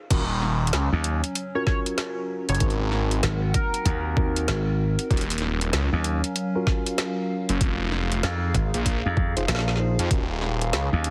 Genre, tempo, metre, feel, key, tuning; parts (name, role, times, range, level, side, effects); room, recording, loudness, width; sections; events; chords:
glitch hop; 96 BPM; 4/4; swing 63% on 16ths; Eb dorian; A4 = 440 Hz
mellow tine electric piano; stabs; 0.1-10.2 s; C4 to C5; -33 LUFS; equal; sidechain pumping, digital delay
phased detuned saw bass; bass; 0.1-10.9 s; Eb1 to F2; -27 LUFS; equal; phaser, tube saturation
drum and bass drum kit; drums; 0.1-11.1 s; crash cymbal, hi-hat, snare drum; -32 LUFS; equal
electronic kick drum; drums; 0.1-10.3 s; -26 LUFS; equal; overdrive
warbly tape-like pad; texture; 0.9-11.1 s; Gb3 to Gb5; -36 LUFS; equal; chorus, built-in reverb, sidechain pumping
slap bass; bass; 0.9-11.1 s; Ab1 to F2; -26 LUFS; equal
sync lead; melody; 1.6-4.1 s; Bb4 to Db5; -36 LUFS; equal; analog chorus, digital delay
little or no reverb; heavily compressed radio sound, multiband compression; -25 LUFS; mono
0.1-11.1 A section
drop 0.1-11.1
0.1 Ebm9; 2.6 Ab9; 5.1 Ebm9; 7.6 Fm7; 10.1 Ebm9